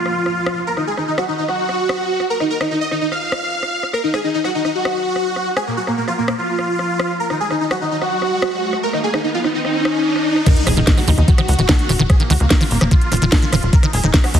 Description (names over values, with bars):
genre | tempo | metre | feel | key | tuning
psychedelic trance | 147 BPM | 4/4 | straight | Eb minor | A4 = 439 Hz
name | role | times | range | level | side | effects
dense compressed supersaw | melody | 0.0-14.4 s | Bb3 to F5 | -19 LUFS | equal | phaser, cassette tape, sidechain pumping, dub echo
downlifter, riser and impact | sound effects | 0.0-0.7, 8.0-12.1 s | none | -25 LUFS | right 1 dB | none
garage drum kit | drums | 0.1-14.4 s | crash cymbal, hi-hat, rim click, snare drum | -23 LUFS | equal | studio reverb
liquid acid bass | riff | 10.5-14.4 s | Eb3 | -20 LUFS | equal | phaser, auto-pan, sidechain pumping, dub echo
electronic kick drum | drums | 10.5-14.2 s | none | -13 LUFS | equal | studio reverb
tight sequencer bass | bass | 10.7-14.4 s | Eb1 to Eb2 | -16 LUFS | equal | none
room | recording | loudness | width
moderate lush hall reverb, RT60 1.9 s | heavily compressed radio sound, multiband compression | -15 LUFS | side -9 dB against mid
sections
0.0-10.5 A section; 10.5-14.4 B section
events
riser 8.0-10.5; drop 10.5-14.4; impact 10.5-12.1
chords
0.0 Eb5